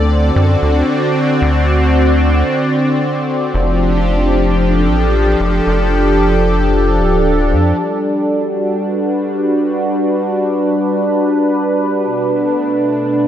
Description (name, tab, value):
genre	IDM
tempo	free time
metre	none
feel	none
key	G major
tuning	A4 = 440 Hz
part	warm analog pad	sustained chords	0.0-13.3 s	B2 to D5	-13 LUFS	equal	chorus
part	rubbery square bass	bass	0.0-7.7 s	D1 to F#2	-14 LUFS	equal	none
room	wet lush hall reverb, RT60 3.0 s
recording	dreamy mix soaked in reverb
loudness	-12 LUFS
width	side -10 dB against mid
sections	0.0-7.8 A section; 7.8-13.3 B section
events	none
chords	0.0 D7; 3.5 F69; 7.8 Gmaj7; 12.0 Bm7